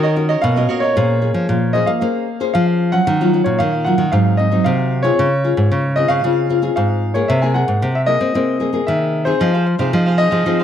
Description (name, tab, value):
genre	samba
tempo	114 BPM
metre	4/4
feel	straight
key	Bb minor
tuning	A4 = 439 Hz
part	warm concert grand piano	melody	0.0-10.6 s	C5 to G#5	-20 LUFS	equal	slapback echo
part	cavaquinho	accompaniment	0.0-1.0, 9.4-10.6 s	Eb4 to F5	-22 LUFS	right 6 dB	none
part	nylon-string guitar	accompaniment	0.0-10.6 s	Ab2 to C5	-19 LUFS	left 2 dB	none
part	nylon-string guitar	bass	0.0-10.6 s	Ab2 to C4	-18 LUFS	equal	none
room	studio reverb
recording	dry, close 1970s-style studio recording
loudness	-14 LUFS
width	side -9 dB against mid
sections	1.0-10.6 A section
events	none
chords	0.0 Ebm7; 1.0 Bbm9; 3.1 Ebm9; 4.1 Ab7; 5.2 Dbmaj7; 7.3 C7alt; 9.4 Fm7